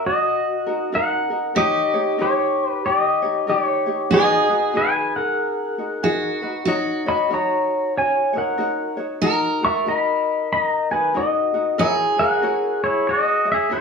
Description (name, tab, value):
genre	Hawaiian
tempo	94 BPM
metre	4/4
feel	swing 61% on 8ths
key	unclear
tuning	A4 = 438 Hz
part	pedal steel guitar	melody	0.0-13.8 s	E4 to C#6	-19 LUFS	left 1 dB	none
part	picked steel-string acoustic guitar	second line	0.0-13.8 s	F#4 to A#4	-25 LUFS	right 2 dB	none
part	ukulele	accompaniment	0.0-13.8 s	D#4 to C#5	-26 LUFS	left 2 dB	none
room	wet studio reverb, RT60 0.7 s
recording	band playing live in one room, small room ambience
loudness	-18 LUFS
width	side -5 dB against mid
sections	0.0-13.8 A section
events	none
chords	0.0 D#m; 1.6 D#7; 4.1 G#m7; 6.7 D#m7; 9.2 Bmaj7; 11.8 F#7